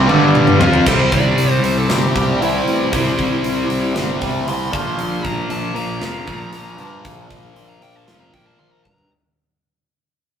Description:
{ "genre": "hard rock", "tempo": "116 BPM", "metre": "4/4", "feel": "straight", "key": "unclear", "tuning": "A4 = 440 Hz", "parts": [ { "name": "biting overdriven guitar", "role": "riff", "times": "0.0-0.9 s", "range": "G2 to F4", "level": "-20 LUFS", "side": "right 3 dB", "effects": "none" }, { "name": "overdriven electric guitar", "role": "riff", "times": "0.0-8.8 s", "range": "G2 to F4", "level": "-20 LUFS", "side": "right 2 dB", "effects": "phaser" }, { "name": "tight distorted guitar", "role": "riff", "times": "0.0-8.8 s", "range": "G2 to F4", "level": "-21 LUFS", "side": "left 5 dB", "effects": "distortion" }, { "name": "fuzz fingered electric bass", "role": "bass", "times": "0.0-9.1 s", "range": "F1 to Bb2", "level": "-23 LUFS", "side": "equal", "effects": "overdrive" }, { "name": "tight metal drum kit", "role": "drums", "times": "0.1-9.1 s", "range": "crash cymbal, hi-hat, kick drum, snare drum, toms", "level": "-22 LUFS", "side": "right 1 dB", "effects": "none" }, { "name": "dark smooth lead guitar", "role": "melody", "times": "0.9-9.1 s", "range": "E4 to C6", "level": "-25 LUFS", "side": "equal", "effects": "overdrive" } ], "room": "wet stone room reverb, RT60 1.0 s", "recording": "rough rehearsal-room recording, tube saturation", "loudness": "-14 LUFS", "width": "side -8 dB against mid", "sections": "0.9-9.1 A section", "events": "drum fill 0.0-0.9, 8.6-9.1; fade-out 0.9-9.1; lead electric guitar solo 0.9-9.1", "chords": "0.0 G5; 0.9 C; 4.7 Bb5", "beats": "0.35 | 0.86 1.38 1.89 2.41 | 2.92 3.44 3.96 4.47 | 4.99 5.50 6.02 6.53 | 7.05 7.56 8.08 8.60" }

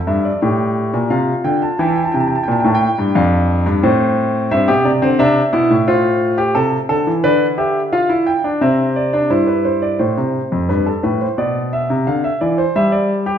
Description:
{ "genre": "classical, baroque-style 3-part fugue for grand piano", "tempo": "88 BPM", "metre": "4/4", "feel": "straight", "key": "F major", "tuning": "A4 = 443 Hz", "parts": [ { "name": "warm concert grand piano", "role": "solo", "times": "0.0-13.4 s", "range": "F2 to A5", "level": "-14 LUFS", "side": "equal", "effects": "none" } ], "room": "wet recital hall reverb, RT60 1.5 s", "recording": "minimal, uncompressed stereo recording", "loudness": "-14 LUFS", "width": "side -9 dB against mid", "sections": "0.0-10.0 A section; 10.0-13.4 B section", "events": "none", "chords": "0.4 Gm7; 1.8 C; 3.2 F; 4.5 C/G; 5.9 Dm7/A; 7.2 G7/D; 8.6 C; 10.0 F; 11.4 Bdim; 12.8 Em/G", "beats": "0.42 1.10 | 1.79 2.48 3.16 3.84 | 4.52 5.20 5.88 6.56 | 7.24 7.93 8.62 9.31 | 10.00 10.70 11.38 12.07 | 12.76" }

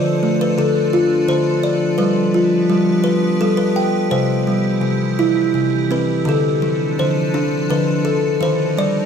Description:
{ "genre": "children's music, lullaby", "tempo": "84 BPM", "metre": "3/4", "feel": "straight", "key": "unclear", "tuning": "A4 = 439 Hz", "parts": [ { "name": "buzzing kalimba", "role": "melody", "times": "0.0-9.1 s", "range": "C3 to G5", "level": "-16 LUFS", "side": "equal", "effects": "none" }, { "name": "icy glass pad", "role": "sustained chords", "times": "0.0-9.1 s", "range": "E3 to Bb4", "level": "-22 LUFS", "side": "left 1 dB", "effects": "chorus, built-in reverb" } ], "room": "moderate studio reverb, RT60 0.6 s", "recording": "none", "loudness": "-15 LUFS", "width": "side -7 dB against mid", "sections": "0.0-6.3 A section; 6.3-9.1 B section", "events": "none", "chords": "0.0 Dm; 2.0 G7; 4.1 C; 6.3 Dm; 8.4 Eb", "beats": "0.58 1.28 | 1.99 2.69 3.40 | 4.11 4.82 5.55 | 6.27 6.98 7.70 | 8.41" }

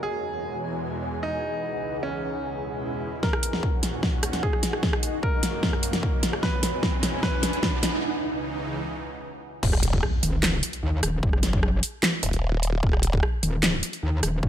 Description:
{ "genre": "heavy wobble dubstep", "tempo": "150 BPM", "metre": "4/4", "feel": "half-time", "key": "Eb phrygian", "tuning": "A4 = 440 Hz", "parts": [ { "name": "bright concert grand piano", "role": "melody", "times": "0.0-7.8 s", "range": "Db4 to B4", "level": "-32 LUFS", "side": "right 1 dB", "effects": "low-pass filter, ping-pong delay" }, { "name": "supersaw pad", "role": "sustained chords", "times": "0.0-9.6 s", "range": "Db2 to Gb4", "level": "-34 LUFS", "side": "right 1 dB", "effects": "sidechain pumping" }, { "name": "granular cloud pad", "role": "texture", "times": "0.0-8.0 s", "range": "Db4 to Bb5", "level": "-34 LUFS", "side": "left 1 dB", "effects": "built-in reverb, sidechain pumping" }, { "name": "dubstep drum kit", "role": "drums", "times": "3.2-14.3 s", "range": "crash cymbal, handclaps, hi-hat, rim click, snare drum", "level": "-26 LUFS", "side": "equal", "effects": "none" }, { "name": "electronic kick drum", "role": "drums", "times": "3.2-14.5 s", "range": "none", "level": "-26 LUFS", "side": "equal", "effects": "none" }, { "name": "riser and impact", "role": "sound effects", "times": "4.6-11.2 s", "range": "none", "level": "-32 LUFS", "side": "right 1 dB", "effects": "none" }, { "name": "formant-sweep wobble bass", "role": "bass", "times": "9.6-13.2 s", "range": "Eb1", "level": "-25 LUFS", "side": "equal", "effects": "chorus, overdrive" }, { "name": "metallic wobble bass", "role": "bass", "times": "10.2-14.5 s", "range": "Eb1 to Eb2", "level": "-25 LUFS", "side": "equal", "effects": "chorus, overdrive" } ], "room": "light reverb, digital ambience", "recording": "none", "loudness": "-23 LUFS", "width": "side -10 dB against mid", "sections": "0.0-3.2 A section; 3.2-9.6 B section; 9.6-14.5 C section", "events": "build-up 3.2-9.6; drum fill 3.2-8.0; riser 4.6-8.0; break 8.0-9.6; drop 9.6-14.5; impact 9.6-11.2", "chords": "0.0 E; 1.6 Dbmadd9; 2.4 E; 3.2 Ebm7; 4.8 Gb; 6.4 E; 8.0 Dbmadd9; 9.6 Ebm", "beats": "| 0.03 0.43 0.83 1.23 | 1.63 2.03 2.43 2.83 | 3.23 3.63 4.03 4.43 | 4.83 5.23 5.63 6.03 | 6.43 6.83 7.23 7.63 | 8.03 8.43 8.83 9.23 | 9.63 10.03 10.43 10.83 | 11.23 11.63 12.03 12.43 | 12.83 13.23 13.63 14.03 | 14.43" }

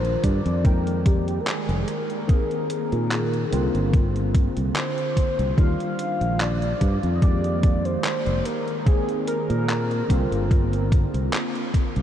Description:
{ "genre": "vaporwave", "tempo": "73 BPM", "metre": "4/4", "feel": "swing 54% on 16ths", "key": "F dorian", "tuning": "A4 = 439 Hz", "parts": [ { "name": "warm velvety synth lead", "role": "melody", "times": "0.0-10.9 s", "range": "G4 to F5", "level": "-29 LUFS", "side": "equal", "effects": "chorus, tape echo" }, { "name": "tine electric piano", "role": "accompaniment", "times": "0.0-12.0 s", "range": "D3 to G5", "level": "-27 LUFS", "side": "equal", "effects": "medium stereo tremolo, analog chorus, diffuse ambient delay" }, { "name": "fretless electric bass", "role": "bass", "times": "0.0-12.0 s", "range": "F1 to Bb2", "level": "-24 LUFS", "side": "equal", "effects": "wide subtle chorus" }, { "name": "detuned 8-bit digital drum machine", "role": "drums", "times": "0.0-12.0 s", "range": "handclaps, hi-hat", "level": "-33 LUFS", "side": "equal", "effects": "overdrive, small room reverb" }, { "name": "electronic kick drum", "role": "drums", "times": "0.2-11.9 s", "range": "none", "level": "-19 LUFS", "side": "equal", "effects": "overdrive, small room reverb" } ], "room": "moderate huge ambient reverb, RT60 8.2 s", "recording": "dreamy mix soaked in reverb, cassette tape", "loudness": "-20 LUFS", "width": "side -10 dB against mid", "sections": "0.0-12.0 A section", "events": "none", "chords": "0.0 Ebmaj9; 0.6 Fm11; 2.3 Bb9sus4; 3.5 C9sus4; 5.6 Ebmaj9; 7.2 Fm11; 8.9 Bb9sus4; 10.1 C9sus4", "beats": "0.65 1.47 | 2.29 3.11 3.94 4.76 | 5.58 6.40 7.22 8.04 | 8.87 9.69 10.51 11.33" }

